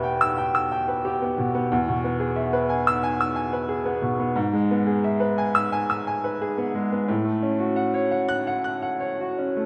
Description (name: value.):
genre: classical, romantic character piece for solo piano.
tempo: 79-92 BPM.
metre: 4/4.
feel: rubato.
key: E major.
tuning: A4 = 437 Hz.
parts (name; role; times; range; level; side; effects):
clear upright piano; solo; 0.0-9.7 s; E2 to F#6; -24 LUFS; equal; none.
room: wet recital hall reverb, RT60 1.8 s.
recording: none.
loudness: -24 LUFS.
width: mono.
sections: 0.0-9.7 A section.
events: none.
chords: 0.0 Em; 1.7 E; 4.4 E/G#; 7.1 F#m/A.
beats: 0.36 1.05 | 1.72 2.37 3.04 3.70 | 4.37 5.05 5.73 6.41 | 7.09 7.77 8.47 9.19.